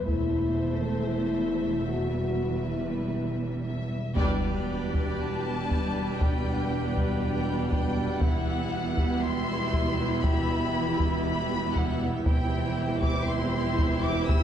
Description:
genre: cinematic, epic orchestral film score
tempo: 119 BPM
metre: 4/4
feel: straight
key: unclear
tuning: A4 = 437 Hz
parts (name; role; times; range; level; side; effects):
- warm symphonic violin section; melody; 0.0-14.4 s; D5 to E6; -35 LUFS; left 3 dB; none
- warm symphonic violin section; second line; 0.0-14.4 s; G4 to E5; -38 LUFS; left 3 dB; none
- rich symphonic viola section; accompaniment; 0.0-14.4 s; E3 to E4; -34 LUFS; equal; none
- mellow French horn section; sustained chords; 0.0-14.4 s; B3 to A4; -34 LUFS; left 4 dB; none
- warm symphonic cello section; bass; 0.0-14.4 s; E2; -34 LUFS; right 3 dB; none
- warm symphonic double bass section; bass; 0.0-14.4 s; E1; -33 LUFS; right 3 dB; none
- solo taiko drums; drums; 0.1-1.0, 4.2-14.4 s; none; -28 LUFS; equal; none
- mellow trombone section; sustained chords; 4.2-14.4 s; B2 to G3; -36 LUFS; right 4 dB; none
- pipe organ, full organ; sustained chords; 4.2-14.4 s; G3 to E5; -36 LUFS; equal; none
- impact; sound effects; 4.2-6.2 s; none; -38 LUFS; equal; none
room: wet recital hall reverb, RT60 1.5 s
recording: dark, warm production, lossy compression artefacts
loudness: -25 LUFS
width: side -9 dB against mid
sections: 0.0-4.2 A section; 4.2-14.4 B section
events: band accent 4.2-4.7; impact 4.2-6.2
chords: 0.1 Am/E; 2.1 Em; 4.2 G/E; 8.2 Emadd9; 12.3 C/E

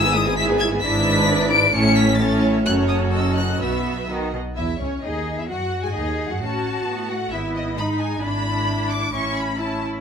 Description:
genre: quick classical-period movement for string orchestra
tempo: 131 BPM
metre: 2/4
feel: straight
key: E major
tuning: A4 = 440 Hz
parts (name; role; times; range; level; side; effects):
- rich chamber violin section; melody; 0.0-9.8 s; C#5 to D7; -24 LUFS; left 3 dB; none
- rich chamber violin section; second line; 0.0-9.8 s; G#4 to D6; -28 LUFS; right 1 dB; none
- rich studio viola section; accompaniment; 0.0-10.0 s; G#3 to G#4; -24 LUFS; equal; none
- clear chamber cello section; bass; 0.0-10.0 s; F#2 to G#4; -26 LUFS; equal; none
- rich chamber double bass section; bass; 0.0-10.0 s; F#1 to A2; -25 LUFS; right 1 dB; none
room: moderate large studio reverb, RT60 1.2 s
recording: minimal, uncompressed stereo recording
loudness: -18 LUFS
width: side -7 dB against mid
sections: 0.0-4.6 A section; 4.6-10.0 B section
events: none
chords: 0.0 E/G#; 0.8 E7/G#; 1.7 A; 2.7 F#m; 3.6 Bsus4; 4.1 B; 4.6 E; 5.5 D#madd11; 6.4 B5/A; 7.3 E/G#; 8.2 E7/G#; 9.1 A

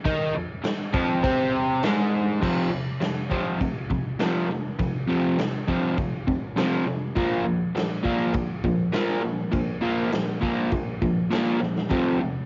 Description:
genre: garage rock duo or trio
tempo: 101 BPM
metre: 4/4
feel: straight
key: unclear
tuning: A4 = 440 Hz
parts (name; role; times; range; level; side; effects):
- crunchy overdriven guitar; riff; 0.0-12.5 s; F2 to Eb4; -26 LUFS; equal; cassette tape
- raw garage drum kit; drums; 0.1-12.0 s; crash cymbal, kick drum, snare drum; -31 LUFS; equal; cassette tape
room: small room ambience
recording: home recording on cassette, nothing above 7.5 kHz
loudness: -25 LUFS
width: mono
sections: 0.0-2.4 A section; 2.4-12.5 B section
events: drum fill 11.6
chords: 0.0 F5; 7.2 Bb5; 11.9 F5

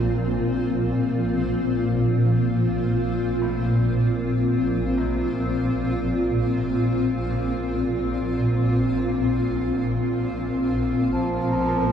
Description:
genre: dark ambient drone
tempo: free time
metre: none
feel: none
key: Bb harmonic minor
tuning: A4 = 439 Hz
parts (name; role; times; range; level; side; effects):
- granular cloud pad; sustained chords; 0.0-11.9 s; Bb2 to F4; -24 LUFS; left 1 dB; built-in reverb
- swarming drone; drone; 0.0-11.9 s; Bb1 to Bb2; -24 LUFS; equal; built-in reverb
- bright grand piano; arpeggios; 3.4-11.9 s; A2 to Db3; -42 LUFS; right 1 dB; none
- mellow bass clarinet; melody; 11.1-11.9 s; F3; -24 LUFS; right 1 dB; none
- flickering grainy texture; texture; 11.4-11.9 s; Bb3 to Bb4; -30 LUFS; equal; built-in reverb
room: moderate plate reverb, RT60 3.1 s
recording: echo-heavy mix, cassette tape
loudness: -20 LUFS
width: side -8 dB against mid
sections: 0.0-11.1 A section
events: none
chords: 0.0 Bb5

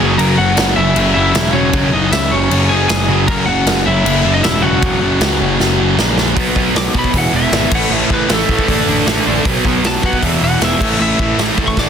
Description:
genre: punk rock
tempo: 155 BPM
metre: 4/4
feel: straight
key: unclear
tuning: A4 = 440 Hz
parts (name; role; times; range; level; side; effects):
- lightly driven lead guitar; melody; 0.0-11.9 s; C#4 to D6; -18 LUFS; left 1 dB; none
- overdriven electric guitar; riff; 0.0-11.9 s; E2 to D4; -17 LUFS; right 1 dB; none
- thick fuzz guitar; riff; 0.0-11.9 s; E2 to D4; -18 LUFS; equal; distortion
- fuzz picked electric bass; bass; 0.0-11.9 s; E1 to B2; -18 LUFS; equal; overdrive
- big rock drum kit; drums; 0.2-11.9 s; crash cymbal, hi-hat, kick drum, snare drum; -17 LUFS; equal; none
room: light reverb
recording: dense, heavily limited modern master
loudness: -11 LUFS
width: side -8 dB against mid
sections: 0.0-6.4 A section; 6.4-11.9 B section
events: drum fill 5.6-6.4; lead electric guitar solo 6.4-11.9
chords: 0.0 F#5; 6.4 B5; 7.1 E; 7.7 A5; 8.7 D5/A; 9.5 B5; 10.2 E5; 10.8 A5

